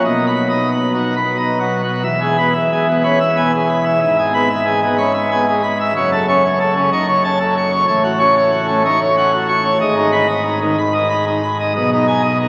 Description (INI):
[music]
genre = classical, organ toccata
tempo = 93 BPM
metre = 3/4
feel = straight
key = E major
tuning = A4 = 440 Hz
[part]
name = pipe organ, plenum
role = solo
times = 0.0-12.5 s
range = E1 to C#6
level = -16 LUFS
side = equal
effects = none
[sound]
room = wet cathedral reverb, RT60 5.3 s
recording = very old 78 rpm record, vinyl crackle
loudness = -16 LUFS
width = mono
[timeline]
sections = 0.0-2.1 A section; 2.1-12.5 B section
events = none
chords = 0.1 B; 2.1 E; 4.0 E/G#; 6.0 F#m; 7.9 F#m/A; 9.8 G#m; 11.8 G#m/B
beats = | 0.06 0.73 1.40 | 2.07 2.73 3.38 | 4.02 4.67 5.31 | 5.95 6.59 7.23 | 7.88 8.52 9.17 | 9.81 10.45 11.10 | 11.75 12.40